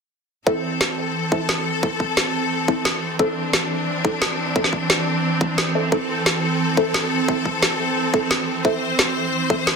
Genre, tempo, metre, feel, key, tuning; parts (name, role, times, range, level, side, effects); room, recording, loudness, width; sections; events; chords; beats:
dark technical drum and bass; 176 BPM; 4/4; straight; A minor; A4 = 440 Hz
bright studio string section; sustained chords; 0.5-9.8 s; E3 to C5; -22 LUFS; equal; sidechain pumping
filtered dub chord stab; stabs; 0.5-9.6 s; C4 to A4; -25 LUFS; equal; phaser, wide subtle chorus, digital delay
electronic kick drum; drums; 0.5-9.6 s; -23 LUFS; equal; high-pass filter on kick, high-pass filter on room
electronic snare drum; drums; 0.8-9.7 s; -20 LUFS; equal
wet plate reverb, RT60 1.1 s, digital ambience; dense, heavily limited modern master; -18 LUFS; side -5 dB against mid
0.5-9.8 A section
0.5 Am
| 0.47 0.81 1.15 1.49 | 1.83 2.17 2.51 2.85 | 3.19 3.53 3.88 4.22 | 4.56 4.90 5.24 5.58 | 5.92 6.26 6.60 6.94 | 7.28 7.62 7.97 8.31 | 8.65 8.99 9.33 9.67